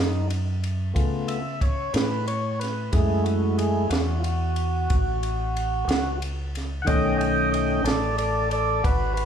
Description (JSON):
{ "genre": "slow blues", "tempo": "61 BPM (dotted quarters)", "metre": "12/8", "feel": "straight", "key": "unclear", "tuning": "A4 = 440 Hz", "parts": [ { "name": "tonewheel organ", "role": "sustained chords", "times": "0.0-9.3 s", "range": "D#3 to G5", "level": "-25 LUFS", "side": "equal", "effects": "slow rotary speaker, overdrive" }, { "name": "deep dub fingered electric bass", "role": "bass", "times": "0.0-9.3 s", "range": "G#1 to C#3", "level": "-27 LUFS", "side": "equal", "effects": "none" }, { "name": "compact cocktail drum kit", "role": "drums", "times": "0.3-9.3 s", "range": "kick drum, ride cymbal, snare drum", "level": "-28 LUFS", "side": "right 1 dB", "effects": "none" } ], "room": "moderate large studio reverb, RT60 1.3 s", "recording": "band playing live in one room", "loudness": "-22 LUFS", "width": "side -8 dB against mid", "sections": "0.0-9.3 A section", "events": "tonewheel organ solo 0.0-9.3", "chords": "0.0 G#7(no3) (rootless); 1.0 C#aug7; 2.9 F#m7; 6.9 B9" }